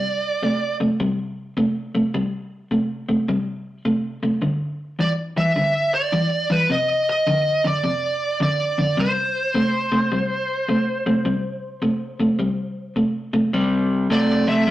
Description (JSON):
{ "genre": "blues", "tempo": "105 BPM", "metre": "4/4", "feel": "swing 66% on 8ths", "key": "C major", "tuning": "A4 = 440 Hz", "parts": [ { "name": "smooth overdriven lead guitar", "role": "melody", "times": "0.0-0.8, 5.0-14.7 s", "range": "B4 to E5", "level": "-22 LUFS", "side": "right 1 dB", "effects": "none" }, { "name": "electric guitar at the edge of break-up", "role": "riff", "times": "0.0-14.7 s", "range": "F2 to A3", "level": "-21 LUFS", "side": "equal", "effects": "spring reverb" } ], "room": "moderate studio reverb, RT60 0.7 s", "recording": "rough rehearsal-room recording, tube saturation", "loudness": "-19 LUFS", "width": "side -14 dB against mid", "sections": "0.0-13.5 A section; 13.5-14.7 A section", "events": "none", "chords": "0.0 C5; 4.4 G5; 6.7 F5; 9.0 C5" }